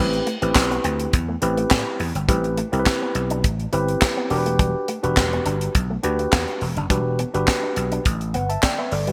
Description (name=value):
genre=early-eighties boogie funk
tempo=104 BPM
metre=4/4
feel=straight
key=E minor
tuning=A4 = 440 Hz
part: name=tine electric piano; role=accompaniment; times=0.0-9.1 s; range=C4 to A5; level=-26 LUFS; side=equal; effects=none
part: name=electric guitar with an envelope filter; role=riff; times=0.0-9.1 s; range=G3 to D4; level=-34 LUFS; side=equal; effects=analog chorus
part: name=vintage slap bass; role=bass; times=0.0-9.1 s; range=E1 to A2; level=-27 LUFS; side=equal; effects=none
part: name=tight funk drum kit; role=drums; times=0.1-9.1 s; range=handclaps, hi-hat, kick drum, snare drum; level=-24 LUFS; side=equal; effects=gated reverb
room=moderate plate reverb, RT60 1.8 s, small room ambience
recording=bright 1980s-style digital production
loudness=-22 LUFS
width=mono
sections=0.0-9.1 A section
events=none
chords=0.0 Am9; 4.3 Em9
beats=0.56 1.13 1.71 | 2.29 2.86 3.44 4.02 | 4.59 5.17 5.75 6.33 | 6.90 7.48 8.06 8.63